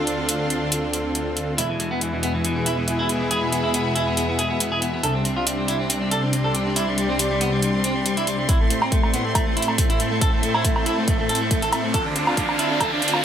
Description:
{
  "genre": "heavy wobble dubstep",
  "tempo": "139 BPM",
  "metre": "4/4",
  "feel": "swing 53% on 16ths, half-time",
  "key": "A minor",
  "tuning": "A4 = 443 Hz",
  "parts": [
    { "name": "supersaw chords", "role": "sustained chords", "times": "0.0-13.2 s", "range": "C2 to F4", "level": "-25 LUFS", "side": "equal", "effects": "sidechain pumping" },
    { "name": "dark studio string section", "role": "texture", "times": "0.0-13.2 s", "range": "B3 to C6", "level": "-27 LUFS", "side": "equal", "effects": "sidechain pumping" },
    { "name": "electronic hi-hat and woodblock", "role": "drums", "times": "0.1-13.2 s", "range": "none", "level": "-24 LUFS", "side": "equal", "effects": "high-pass filter on hats, high-pass filter on cymbals, high-pass filter on perc, high-pass filter on room" },
    { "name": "clean electric guitar", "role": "melody", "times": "1.6-13.2 s", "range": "E3 to A4", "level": "-24 LUFS", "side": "equal", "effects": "low-pass filter, tape echo" },
    { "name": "electronic kick drum", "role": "drums", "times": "8.5-12.9 s", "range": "none", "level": "-22 LUFS", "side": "equal", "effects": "none" },
    { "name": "riser", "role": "sound effects", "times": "10.0-13.2 s", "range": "none", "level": "-29 LUFS", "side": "equal", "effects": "none" }
  ],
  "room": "moderate digital room reverb, RT60 1.1 s, digital ambience",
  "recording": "high-pass filter",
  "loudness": "-19 LUFS",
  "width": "side -9 dB against mid",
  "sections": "0.0-8.5 A section; 8.5-13.2 B section",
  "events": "build-up 8.5-13.2; filter sweep 8.5-13.2; riser 10.0-13.2; drum fill 11.9-13.2",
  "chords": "0.0 Dm7; 1.6 E; 5.0 Csus2; 8.5 Am; 11.9 Dm7"
}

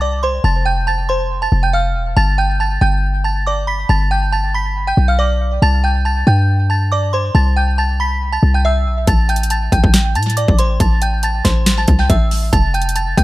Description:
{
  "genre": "hip hop, trap",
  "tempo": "139 BPM",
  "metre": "4/4",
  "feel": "half-time",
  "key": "A minor",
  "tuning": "A4 = 439 Hz",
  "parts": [
    { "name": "delicate synth tine bell", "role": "melody", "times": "0.0-13.2 s", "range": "C5 to B6", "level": "-18 LUFS", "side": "right 1 dB", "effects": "chorus, tape echo" },
    { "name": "warm 808-style bass", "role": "bass", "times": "0.0-13.2 s", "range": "E1 to A2", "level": "-15 LUFS", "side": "equal", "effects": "none" },
    { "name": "trap drum kit", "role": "drums", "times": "9.1-13.2 s", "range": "hi-hat, kick drum, snare drum", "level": "-15 LUFS", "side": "equal", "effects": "overdrive, tape echo" }
  ],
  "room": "little or no reverb",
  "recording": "echo-heavy mix",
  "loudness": "-13 LUFS",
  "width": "side -17 dB against mid",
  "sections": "0.0-13.2 A section",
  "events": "none",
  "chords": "0.0 F; 2.2 G; 5.6 C; 9.1 Am7; 12.5 F"
}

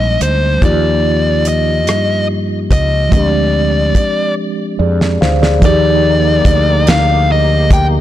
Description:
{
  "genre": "slow six-eight R&B",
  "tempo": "48 BPM (dotted quarters)",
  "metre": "6/8",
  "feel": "straight",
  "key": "Eb major",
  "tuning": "A4 = 440 Hz",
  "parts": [
    { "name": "dark smooth lead guitar", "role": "melody", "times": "0.0-7.8 s", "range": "C5 to G5", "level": "-15 LUFS", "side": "left 2 dB", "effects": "overdrive, ping-pong delay" },
    { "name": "mellow tine electric piano", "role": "accompaniment", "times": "0.0-8.0 s", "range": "F3 to F5", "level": "-17 LUFS", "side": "right 2 dB", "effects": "medium stereo tremolo" },
    { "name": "mellow fretless electric bass", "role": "bass", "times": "0.0-8.0 s", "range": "Bb1 to G2", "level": "-14 LUFS", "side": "equal", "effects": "tube saturation" },
    { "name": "damped 70s drum kit", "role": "drums", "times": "0.2-7.9 s", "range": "hi-hat, kick drum, rim click, snare drum", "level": "-14 LUFS", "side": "equal", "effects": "soft clipping on snare" },
    { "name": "tonewheel organ", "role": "sustained chords", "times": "5.6-8.0 s", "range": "Bb3 to G4", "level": "-22 LUFS", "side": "left 1 dB", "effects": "chorus vibrato, slow rotary speaker" }
  ],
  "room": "small room reverb",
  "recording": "blown-out, overdriven recording, overdrive",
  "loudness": "-10 LUFS",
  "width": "side -12 dB against mid",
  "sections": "0.0-5.6 A section; 5.6-8.0 B section",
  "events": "drum fill 4.4-5.6",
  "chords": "0.0 Abmaj9; 0.6 Ebmaj9; 3.1 Fm69/D; 5.6 Ebmaj7"
}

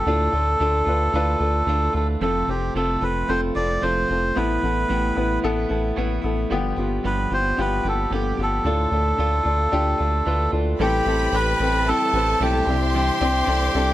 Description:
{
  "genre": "piano-driven pop",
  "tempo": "112 BPM",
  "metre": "4/4",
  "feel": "straight",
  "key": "A minor",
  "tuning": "A4 = 439 Hz",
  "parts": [
    { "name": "melodica", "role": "melody", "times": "0.0-13.9 s", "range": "G4 to D5", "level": "-23 LUFS", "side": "equal", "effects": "none" },
    { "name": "dark baby grand piano", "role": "accompaniment", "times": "0.0-13.9 s", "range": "G2 to B4", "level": "-25 LUFS", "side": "left 3 dB", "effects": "none" },
    { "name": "direct-recorded clean electric guitar", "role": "riff", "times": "0.0-13.9 s", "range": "F2 to G4", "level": "-30 LUFS", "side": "right 6 dB", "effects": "none" },
    { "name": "round analog bass", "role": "bass", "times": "0.0-13.9 s", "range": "F1 to D2", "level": "-24 LUFS", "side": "equal", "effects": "none" },
    { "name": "rich studio violin section", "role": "second line", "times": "10.8-13.9 s", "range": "A4 to C6", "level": "-28 LUFS", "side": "equal", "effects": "tape echo" },
    { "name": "warm studio string section", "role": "sustained chords", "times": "10.8-13.9 s", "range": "C4 to D6", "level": "-33 LUFS", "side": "left 3 dB", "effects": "none" }
  ],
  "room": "light reverb, small room ambience",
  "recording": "none",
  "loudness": "-19 LUFS",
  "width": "side -14 dB against mid",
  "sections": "0.0-10.8 A section; 10.8-13.9 B section",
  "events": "none",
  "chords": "0.1 Dm; 2.2 F; 4.4 Asus2; 6.5 G7; 8.7 Dm; 10.8 Am7; 12.7 Cadd9"
}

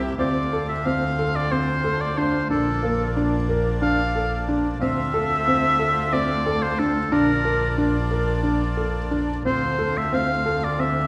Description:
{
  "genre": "contemporary instrumental, chamber music in an uneven meter",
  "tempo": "181 BPM (eighths)",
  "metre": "7/8",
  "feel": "straight",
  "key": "D minor",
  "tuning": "A4 = 440 Hz",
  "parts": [
    { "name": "accordion", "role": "sustained chords", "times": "0.0-11.1 s", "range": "C3 to F4", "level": "-33 LUFS", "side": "equal", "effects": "none" },
    { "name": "felt-muted upright piano", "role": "arpeggios", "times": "0.0-11.0 s", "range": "Bb3 to Bb4", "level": "-27 LUFS", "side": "equal", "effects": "none" },
    { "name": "dark double bass", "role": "bass", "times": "0.0-11.1 s", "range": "Bb1 to D2", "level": "-29 LUFS", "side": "equal", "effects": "none" },
    { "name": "clear oboe", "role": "melody", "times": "0.2-11.1 s", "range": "A4 to F5", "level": "-27 LUFS", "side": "equal", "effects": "none" }
  ],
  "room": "wet recital hall reverb, RT60 1.3 s",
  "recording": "recorded in a church or concert hall",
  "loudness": "-22 LUFS",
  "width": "mono",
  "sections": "0.2-11.1 A section",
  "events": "none",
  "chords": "0.2 Dm7; 2.5 Bbmaj7; 4.8 Dm7; 7.1 Bb; 9.5 Dm7"
}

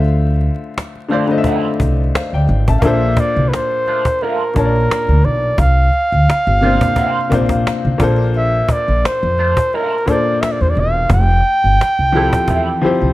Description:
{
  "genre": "R&B, neo-soul",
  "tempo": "87 BPM",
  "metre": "4/4",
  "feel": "swing 54% on 16ths",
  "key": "unclear",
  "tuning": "A4 = 438 Hz",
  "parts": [
    { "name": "warm upright piano", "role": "accompaniment", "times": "0.0-13.1 s", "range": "Bb2 to A5", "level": "-19 LUFS", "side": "left 3 dB", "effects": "none" },
    { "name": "upright bass", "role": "bass", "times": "0.0-13.1 s", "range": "E1 to F2", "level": "-15 LUFS", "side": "equal", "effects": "none" },
    { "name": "cajon", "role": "drums", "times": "0.1-13.1 s", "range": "none", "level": "-19 LUFS", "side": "equal", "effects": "none" },
    { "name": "electric guitar through a small old amp", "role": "second line", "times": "1.1-12.7 s", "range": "F3 to G4", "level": "-24 LUFS", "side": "right 5 dB", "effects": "wah, analog chorus" },
    { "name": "mellow flugelhorn", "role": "melody", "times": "2.8-13.1 s", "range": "Bb4 to G5", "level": "-17 LUFS", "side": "right 1 dB", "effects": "none" }
  ],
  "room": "studio ambience",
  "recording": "vinyl crackle",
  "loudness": "-13 LUFS",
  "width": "side -16 dB against mid",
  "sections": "0.0-2.8 A section; 2.8-13.1 B section",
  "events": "drum fill 12.5-13.1",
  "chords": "0.0 Dm9; 2.8 Bbmaj7; 5.6 C7sus4; 8.0 Bbmaj7; 11.1 Fmaj9"
}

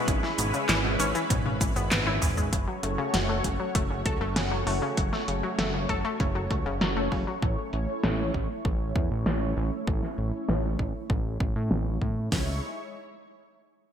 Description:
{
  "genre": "synthwave",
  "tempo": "98 BPM",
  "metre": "4/4",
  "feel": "straight",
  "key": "unclear",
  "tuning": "A4 = 441 Hz",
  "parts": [
    { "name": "analog string pad", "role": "sustained chords", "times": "0.0-12.6 s", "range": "G#3 to C#5", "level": "-32 LUFS", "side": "equal", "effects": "ensemble chorus, phaser, sidechain pumping" },
    { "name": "analog pluck", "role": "arpeggios", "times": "0.0-7.4 s", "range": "B2 to A4", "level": "-32 LUFS", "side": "left 2 dB", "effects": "chorus, ping-pong delay" },
    { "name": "fat analog bass", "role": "bass", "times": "0.1-12.6 s", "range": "F#1 to A2", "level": "-30 LUFS", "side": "equal", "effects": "sidechain pumping" },
    { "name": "pop drum kit", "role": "drums", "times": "0.1-12.5 s", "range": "hi-hat, kick drum, snare drum", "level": "-29 LUFS", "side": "equal", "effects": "overdrive" },
    { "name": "pop drum kit", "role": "drums", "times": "0.1-12.1 s", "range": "cabasa, handclaps, hi-hat, snare drum, toms", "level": "-30 LUFS", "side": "equal", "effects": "overdrive, low-pass filter on hats, low-pass filter on perc, low-pass filter on snare, low-pass filter on toms, low-pass filter on room, gated reverb" }
  ],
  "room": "moderate lush hall reverb, RT60 2.1 s",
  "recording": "bright 1980s-style digital production",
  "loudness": "-25 LUFS",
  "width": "side -8 dB against mid",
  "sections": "0.0-2.5 A section; 2.5-12.3 B section; 12.3-13.9 C section",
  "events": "drum fill 1.3-2.5; filter sweep on drum 2.5-12.3; filter sweep on analog synth pad 2.5-12.3",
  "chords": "0.0 C#m7/G#; 2.5 F#m; 7.4 A; 12.3 C#madd9"
}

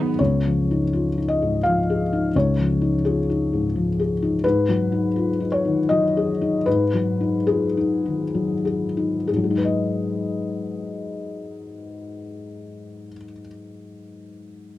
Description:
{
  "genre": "classical",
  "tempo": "62-86 BPM",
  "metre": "3/4",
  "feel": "rubato",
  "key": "G# dorian",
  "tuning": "A4 = 441 Hz",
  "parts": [
    { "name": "felt-muted upright piano", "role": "accompaniment", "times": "0.0-14.8 s", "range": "C#2 to E#5", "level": "-20 LUFS", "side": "left 2 dB", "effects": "none" }
  ],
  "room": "light reverb",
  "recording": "dry, close 1970s-style studio recording",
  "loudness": "-19 LUFS",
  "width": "side -15 dB against mid",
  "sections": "0.2-9.3 A section; 9.3-14.8 B section",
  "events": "slowing down 3.4-9.3",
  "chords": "0.2 C#add9; 4.4 G#m7"
}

